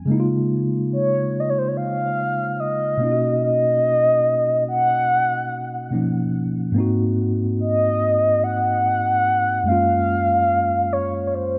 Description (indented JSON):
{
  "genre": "R&B",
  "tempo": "72 BPM",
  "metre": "4/4",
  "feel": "straight",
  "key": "Db major",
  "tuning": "A4 = 439 Hz",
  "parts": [
    { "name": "mellow tine electric piano", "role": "accompaniment", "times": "0.0-11.6 s", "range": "Gb2 to Gb4", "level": "-25 LUFS", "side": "equal", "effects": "none" },
    { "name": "mellow horn-like synth lead", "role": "melody", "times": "0.9-11.6 s", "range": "C5 to Gb5", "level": "-21 LUFS", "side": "equal", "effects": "chorus, delay" }
  ],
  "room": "light reverb",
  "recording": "none",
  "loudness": "-20 LUFS",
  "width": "mono",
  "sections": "0.0-11.6 A section",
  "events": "none",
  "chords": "0.1 Db6; 3.0 Cbmaj9; 6.8 Ab9; 9.7 Gbmaj9"
}